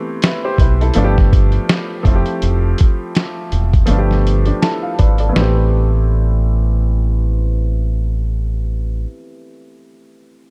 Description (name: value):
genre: lo-fi hip hop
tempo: 82 BPM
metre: 4/4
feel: swing 57% on 16ths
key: A minor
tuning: A4 = 440 Hz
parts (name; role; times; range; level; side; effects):
- clear upright piano; accompaniment; 0.0-10.5 s; E3 to A5; -23 LUFS; equal; cassette tape, low-pass filter
- lo-fi sampler-style drum kit; drums; 0.2-5.5 s; hi-hat, kick drum, snare drum; -16 LUFS; equal; none
- deep dub fingered electric bass; bass; 0.6-9.0 s; E1 to B1; -17 LUFS; equal; none
room: little or no reverb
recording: dark, warm production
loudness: -16 LUFS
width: mono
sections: 0.0-5.3 A section; 5.3-8.3 B section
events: filter sweep on upright piano 0.0-5.3; upright piano fill 4.2-5.3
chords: 0.0 Am9; 1.0 G9; 2.1 Fmaj7; 3.9 G9; 5.3 Am9